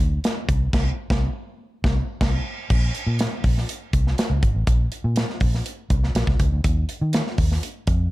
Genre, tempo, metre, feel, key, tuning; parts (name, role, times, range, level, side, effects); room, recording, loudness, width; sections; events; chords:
polished 1980s jazz-funk pop; 122 BPM; 4/4; straight; A4 = 440 Hz
vintage muted fingered electric bass; bass; 0.0-8.1 s; Ab1 to Eb3; -22 LUFS; equal
modern studio drum kit; drums; 0.2-8.0 s; crash cymbal, hi-hat, kick drum, snare drum; -22 LUFS; equal
little or no reverb; dark, warm production; -20 LUFS; side -18 dB against mid
0.0-2.7 A section; 2.7-8.1 B section
band accent 0.7-2.7